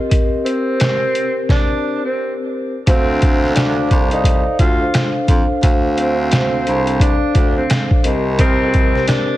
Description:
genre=hip hop, boom-bap hip-hop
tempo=87 BPM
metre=4/4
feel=swing 62% on 16ths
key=D phrygian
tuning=A4 = 440 Hz
part: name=vibraphone with medium mallets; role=accompaniment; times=0.0-9.4 s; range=C4 to F5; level=-20 LUFS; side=left 1 dB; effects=cassette tape, high-pass filter, low-pass filter
part: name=trip hop sampler-style drum kit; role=drums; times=0.1-9.3 s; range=hi-hat, kick drum, rim click, snare drum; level=-16 LUFS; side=equal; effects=none
part: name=breathy tenor saxophone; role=melody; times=0.4-9.4 s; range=C4 to F4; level=-20 LUFS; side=equal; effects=high-pass filter, low-pass filter, ping-pong delay
part: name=warm baritone saxophone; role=bass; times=2.9-9.1 s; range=C2 to F2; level=-21 LUFS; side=equal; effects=none
part: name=clear saxophone section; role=stabs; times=8.4-8.9 s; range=G3 to Bb4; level=-28 LUFS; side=equal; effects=high-pass filter, low-pass filter, ping-pong delay
room=small room ambience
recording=heavily compressed radio sound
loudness=-13 LUFS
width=side -15 dB against mid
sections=0.0-2.9 A section; 2.9-9.4 B section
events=stop 1.5-2.9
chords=0.0 Cm7; 2.9 Dm7; 8.0 Cm7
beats=| 0.11 0.80 1.49 2.18 | 2.87 3.56 4.25 4.94 | 5.63 6.32 7.01 7.70 | 8.39 9.08

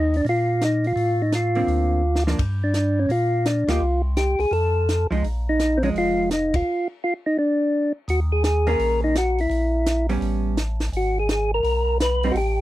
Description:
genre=soul jazz organ trio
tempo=168 BPM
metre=4/4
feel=swing 64% on 8ths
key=Bb major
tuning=A4 = 440 Hz
part: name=percussive tonewheel organ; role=melody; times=0.0-12.6 s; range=C4 to Cb5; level=-21 LUFS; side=equal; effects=slow rotary speaker
part: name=tonewheel organ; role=bass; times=0.0-12.6 s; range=F1 to Bb2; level=-23 LUFS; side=equal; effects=none
part: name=compact cocktail drum kit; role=drums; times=0.1-12.5 s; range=hi-hat, kick drum, ride cymbal, snare drum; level=-28 LUFS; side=equal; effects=none
part: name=vintage hollow-body jazz guitar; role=accompaniment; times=1.6-6.3, 8.7-12.4 s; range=D3 to Ab4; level=-25 LUFS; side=right 3 dB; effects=none
room=little or no reverb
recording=dry, close 1970s-style studio recording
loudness=-19 LUFS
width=side -15 dB against mid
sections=0.0-8.1 A section; 8.1-12.6 B section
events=drum fill 2.0-2.4; band accent 3.6, 6.5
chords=0.0 Ebmaj7sus2; 1.0 Bbmaj9/A; 1.7 Bbadd9/D; 2.4 Gm7; 3.8 Fmadd9/C; 4.5 F7; 5.2 Bb7sus4; 6.7 N.C.; 8.1 Eb7sus4; 9.5 Bbdim; 10.2 A9; 10.9 Abm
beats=0.25 0.61 | 0.96 1.32 1.68 2.03 | 2.39 2.74 3.10 3.46 | 3.81 4.17 4.52 4.88 | 5.24 5.59 5.95 6.30 | 6.66 7.02 7.37 7.73 | 8.09 8.44 8.80 9.15 | 9.51 9.87 10.22 10.58 | 10.93 11.29 11.64 12.00 | 12.35

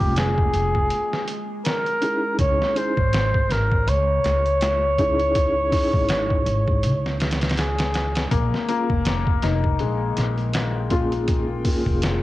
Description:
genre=trip hop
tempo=81 BPM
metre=4/4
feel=swing 57% on 16ths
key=Bb dorian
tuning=A4 = 443 Hz
part: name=trumpet with bucket mute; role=melody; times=0.0-8.3 s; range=G4 to Db5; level=-23 LUFS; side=equal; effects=tape echo
part: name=reed electric piano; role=accompaniment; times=0.0-12.2 s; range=Ab3 to Ab4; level=-28 LUFS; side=equal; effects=fast tremolo, cassette tape, tape echo
part: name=upright bass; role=bass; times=0.0-12.2 s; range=F1 to Db2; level=-24 LUFS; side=equal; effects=none
part: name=trip hop sampler-style drum kit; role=drums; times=0.0-12.2 s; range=hi-hat, kick drum, snare drum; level=-24 LUFS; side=equal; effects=cassette tape
part: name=bowed-like drone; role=texture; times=0.1-12.2 s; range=Ab3 to G5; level=-38 LUFS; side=right 3 dB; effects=built-in reverb, cassette tape
part: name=felt-muted upright piano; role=arpeggios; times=8.3-12.2 s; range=Ab3 to F4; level=-26 LUFS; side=left 7 dB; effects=cassette tape, tape echo
room=light reverb, small room ambience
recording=home recording on cassette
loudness=-19 LUFS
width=side -16 dB against mid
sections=0.0-12.2 A section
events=break 6.8-8.3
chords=0.0 Bbm7; 2.4 Dbmadd9; 8.3 Bbm7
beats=0.17 0.91 1.65 | 2.39 3.13 3.87 4.61 | 5.35 6.09 6.83 7.57 | 8.31 9.05 9.80 10.54 | 11.28 12.02

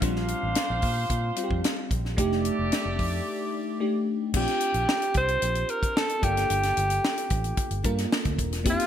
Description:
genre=polished 1980s jazz-funk pop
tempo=111 BPM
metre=4/4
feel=straight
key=Bb major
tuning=A4 = 440 Hz
part: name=clear horn section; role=second line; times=0.0-4.0 s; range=A3 to F5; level=-32 LUFS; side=right 1 dB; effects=digital delay
part: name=bell-like FM electric piano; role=accompaniment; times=0.0-8.9 s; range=G3 to Bb4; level=-30 LUFS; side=left 1 dB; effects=phaser, lush chorus
part: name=vintage muted fingered electric bass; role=bass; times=0.0-8.8 s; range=Eb1 to Bb2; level=-29 LUFS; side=equal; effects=none
part: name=tight funk drum kit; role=drums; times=0.0-8.9 s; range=crash cymbal, hi-hat, kick drum, snare drum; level=-28 LUFS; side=equal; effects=gated reverb
part: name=breathy alto saxophone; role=melody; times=4.4-8.9 s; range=F4 to C5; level=-26 LUFS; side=right 1 dB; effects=none
room=moderate plate reverb, RT60 1.5 s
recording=bright 1980s-style digital production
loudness=-24 LUFS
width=side -9 dB against mid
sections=0.0-4.3 A section; 4.3-8.9 B section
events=break 3.3-4.3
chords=0.0 Bb69; 2.2 F13; 4.3 Bb6; 6.2 Gm9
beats=| 0.02 0.56 1.10 1.64 | 2.18 2.72 3.26 3.80 | 4.34 4.88 5.42 5.96 | 6.50 7.04 7.58 8.12 | 8.66

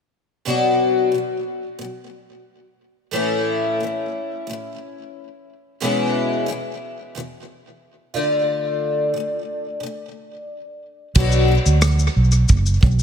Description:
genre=acoustic pop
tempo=90 BPM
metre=4/4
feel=straight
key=unclear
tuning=A4 = 444 Hz
part: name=picked twelve-string acoustic guitar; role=accompaniment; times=0.5-13.0 s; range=E2 to F#4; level=-21 LUFS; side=left 2 dB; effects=double-tracked left and right, tape echo
part: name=vintage muted fingered electric bass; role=bass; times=11.2-13.0 s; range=F#1 to D2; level=-15 LUFS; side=right 1 dB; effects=none
part: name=loose indie drum kit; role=drums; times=11.2-13.0 s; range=crash cymbal, kick drum, rim click, shaker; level=-19 LUFS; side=right 1 dB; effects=tape echo
room=light reverb, small room ambience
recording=echo-heavy mix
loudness=-18 LUFS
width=side -7 dB against mid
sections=0.5-11.2 A section; 11.2-13.0 B section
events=none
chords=0.5 Bm; 3.1 A; 5.8 E6; 8.2 Dm; 11.2 Bm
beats=| 0.46 1.13 1.80 2.47 | 3.14 3.81 4.47 5.14 | 5.81 6.48 7.15 7.82 | 8.49 9.16 9.82 10.49 | 11.16 11.83 12.49

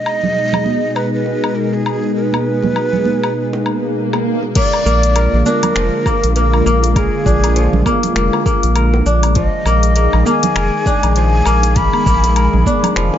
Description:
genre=organic downtempo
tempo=100 BPM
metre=4/4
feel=swing 59% on 16ths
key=unclear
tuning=A4 = 438 Hz
part: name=breathy ney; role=melody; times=0.0-13.0 s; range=Ab4 to Cb6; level=-20 LUFS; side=right 2 dB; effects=digital delay
part: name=warm analog pad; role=sustained chords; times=0.0-13.2 s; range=Cb3 to Ab4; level=-19 LUFS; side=left 1 dB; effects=chorus, sidechain pumping
part: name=organic electronic drum kit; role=drums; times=0.1-13.1 s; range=cabasa, crash cymbal, finger snaps, hi-hat, woodblock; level=-22 LUFS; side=left 4 dB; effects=none
part: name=congas and bongos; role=percussion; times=0.2-13.2 s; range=none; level=-22 LUFS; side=right 5 dB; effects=none
part: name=swell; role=sound effects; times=3.6-4.6 s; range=none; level=-24 LUFS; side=right 4 dB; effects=none
part: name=kora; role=arpeggios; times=4.6-13.2 s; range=F3 to Bb4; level=-19 LUFS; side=left 2 dB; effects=ping-pong delay
part: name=electronic kick drum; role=drums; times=4.6-12.8 s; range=none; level=-17 LUFS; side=equal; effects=none
part: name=round analog bass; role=bass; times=4.9-13.1 s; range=F1 to Bb1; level=-14 LUFS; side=equal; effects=sidechain pumping
room=light reverb, digital ambience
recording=nothing above 7.5 kHz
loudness=-12 LUFS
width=side -10 dB against mid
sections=0.0-4.6 A section; 4.6-13.2 B section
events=filter sweep on drum 0.0-4.6; swell 3.6-4.6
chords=0.0 Abm; 4.6 Bb7; 9.4 Abm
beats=0.36 0.96 1.56 | 2.16 2.76 3.36 3.96 | 4.56 5.16 5.76 6.36 | 6.96 7.56 8.16 8.76 | 9.36 9.96 10.56 11.16 | 11.76 12.36 12.96

